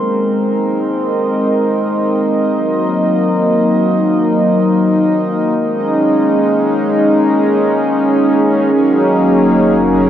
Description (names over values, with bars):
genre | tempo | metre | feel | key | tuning
ambient | 78 BPM | 4/4 | straight | Eb dorian | A4 = 440 Hz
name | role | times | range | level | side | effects
warm analog pad | sustained chords | 0.0-10.1 s | Gb3 to Eb5 | -12 LUFS | equal | chorus
pedal harmonium | drone | 0.0-10.1 s | Eb3 to Bb3 | -22 LUFS | equal | none
glass harmonica | texture | 0.0-10.1 s | Bb4 to C6 | -28 LUFS | right 1 dB | none
deep rumbling drone | bass | 9.3-10.1 s | Gb1 | -31 LUFS | equal | built-in reverb, phaser
room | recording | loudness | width
wet huge ambient reverb, RT60 7.7 s | worn, warbling old tape, cassette tape, warbly pitch drift | -11 LUFS | side -10 dB against mid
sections
0.0-8.7 A section; 8.7-10.1 B section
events
fade-in on harmonium 0.0-8.7; fade-out on glass harmonica 0.0-8.7; filter sweep on analog synth pad 0.0-8.7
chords
0.0 Abadd9; 2.5 Ebm; 5.6 Dbsus2; 8.7 Gb